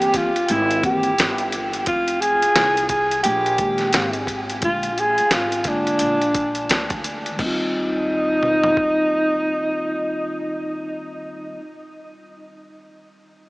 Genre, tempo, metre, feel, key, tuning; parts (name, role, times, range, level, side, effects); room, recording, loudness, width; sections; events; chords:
hip hop, jazz-hop; 87 BPM; 4/4; swing 60% on 16ths; Eb major; A4 = 439 Hz
mellow alto saxophone; melody; 0.0-10.9 s; D4 to Ab4; -20 LUFS; equal; analog delay
mellow tine electric piano; accompaniment; 0.0-11.6 s; D3 to G4; -29 LUFS; left 1 dB; medium stereo tremolo
upright bass; bass; 0.0-11.6 s; F1 to Eb2; -31 LUFS; equal
dusty soul sampler-style drum kit; drums; 0.0-9.0 s; crash cymbal, hi-hat, kick drum, snare drum, toms; -24 LUFS; equal
wet huge ambient reverb, RT60 8.2 s; dreamy mix soaked in reverb, small speaker sound; -18 LUFS; side -24 dB against mid
0.0-7.4 A section; 7.4-10.1 B section
0.0 C7; 1.9 Fm11; 4.6 Bb7; 7.4 Eb69